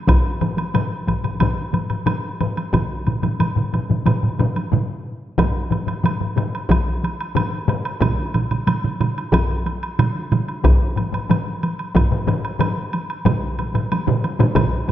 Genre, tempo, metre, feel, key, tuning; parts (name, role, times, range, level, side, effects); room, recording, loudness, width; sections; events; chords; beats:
japanese traditional, taiko drum ensemble; 91 BPM; 4/4; straight
taiko ensemble; percussion; 0.1-14.9 s; -24 LUFS; equal
taiko ensemble; percussion; 0.1-14.9 s; -23 LUFS; left 4 dB
taiko ensemble; percussion; 0.1-14.7 s; -20 LUFS; equal
woodblock; percussion; 0.1-14.9 s; -28 LUFS; right 2 dB
solo taiko drums; percussion; 2.7-14.9 s; -21 LUFS; right 4 dB
wet recital hall reverb, RT60 1.6 s; -18 LUFS; side -12 dB against mid
0.0-5.4 A section; 5.4-14.9 B section
stop 4.7-5.4
| 0.09 0.75 1.41 2.08 | 2.74 3.40 4.06 4.72 | 5.38 6.04 6.70 7.36 | 8.02 8.67 9.33 9.99 | 10.64 11.30 11.95 12.61 | 13.26 13.91 14.57